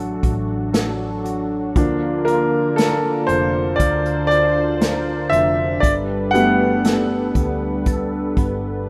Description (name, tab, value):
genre	pop ballad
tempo	59 BPM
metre	4/4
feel	straight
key	unclear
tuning	A4 = 440 Hz
part	clear grand piano	accompaniment	0.0-8.9 s	F3 to F#5	-22 LUFS	equal	none
part	warm analog pad	sustained chords	0.0-8.9 s	D3 to C5	-25 LUFS	equal	chorus
part	direct-recorded clean electric guitar	arpeggios	0.0-8.9 s	D3 to Bb4	-35 LUFS	equal	ensemble chorus, analog delay
part	hollow-body short-scale fingered electric bass	bass	0.0-8.9 s	F1 to D2	-29 LUFS	equal	none
part	unplugged drum kit	drums	0.2-8.6 s	hi-hat, kick drum, snare drum	-23 LUFS	equal	none
room	light reverb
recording	rough home demo mix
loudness	-19 LUFS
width	mono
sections	0.0-8.9 A section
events	grand piano solo 0.0-8.9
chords	0.0 D; 1.8 Bb; 5.8 Gadd9